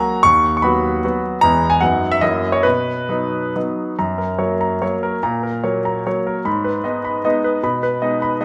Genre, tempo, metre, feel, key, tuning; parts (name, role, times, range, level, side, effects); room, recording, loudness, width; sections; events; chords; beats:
classical, romantic triple-time dance for piano with dotted rhythms; 125-164 BPM; 3/4; rubato; B major, F# major from 4.0 s; A4 = 440 Hz
clear concert grand piano; solo; 0.0-8.4 s; D#2 to C#6; -18 LUFS; equal
moderate recital hall reverb, RT60 1.6 s; -18 LUFS; mono
0.0-4.0 A section; 4.0-8.4 B section
0.2 B/D#; 1.4 E; 1.8 B/F#; 2.2 F#7; 2.6 B; 4.0 F#; 5.2 F#/A#; 6.5 G#m; 7.6 G#m/B
| 0.24 0.63 1.03 | 1.42 1.81 2.22 | 2.64 3.10 3.56 | 3.99 4.40 4.83 | 5.23 5.64 6.06 | 6.45 6.85 7.25 | 7.64 8.03 8.41